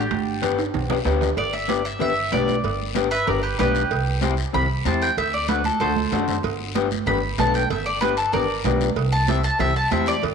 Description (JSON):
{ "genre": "latin, cumbia", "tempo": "190 BPM", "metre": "4/4", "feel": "straight", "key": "G major", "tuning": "A4 = 439 Hz", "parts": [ { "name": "mandolin", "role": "melody", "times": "0.0-10.2 s", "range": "G4 to B5", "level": "-24 LUFS", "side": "right 1 dB", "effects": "none" }, { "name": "breathy clarinet", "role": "second line", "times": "0.0-1.0 s", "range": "D4", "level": "-36 LUFS", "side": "left 7 dB", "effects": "none" }, { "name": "upright bass", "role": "bass", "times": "0.0-10.3 s", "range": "G1 to F#2", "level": "-26 LUFS", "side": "right 1 dB", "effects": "none" }, { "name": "congas", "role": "percussion", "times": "0.1-10.3 s", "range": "none", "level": "-29 LUFS", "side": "right 14 dB", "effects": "none" }, { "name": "guiro", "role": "percussion", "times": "0.1-10.3 s", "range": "none", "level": "-36 LUFS", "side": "left 11 dB", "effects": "none" }, { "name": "timbales and cowbell", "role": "percussion", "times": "0.1-10.3 s", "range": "none", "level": "-32 LUFS", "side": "right 12 dB", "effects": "none" }, { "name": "electric guitar at the edge of break-up", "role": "accompaniment", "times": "0.4-10.1 s", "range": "A3 to A4", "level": "-25 LUFS", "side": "left 9 dB", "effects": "none" } ], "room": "moderate echo chamber reverb, RT60 1.7 s, studio reverb", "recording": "1960s-style stereo with parts hard left and right", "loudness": "-19 LUFS", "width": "side -6 dB against mid", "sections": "0.0-1.4 A section; 1.4-10.3 B section", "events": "drum fill 0.1-1.4, 5.7-6.4; mandolin solo 1.4-10.3", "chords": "0.1 G; 3.9 C; 5.2 D7; 6.4 G; 9.0 C", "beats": "| 0.11 0.42 0.74 1.06 | 1.38 1.69 2.01 2.33 | 2.64 2.96 3.28 3.59 | 3.91 4.23 4.54 4.86 | 5.17 5.49 5.81 6.12 | 6.44 6.76 7.07 7.39 | 7.70 8.02 8.34 8.65 | 8.97 9.28 9.60 9.91 | 10.23" }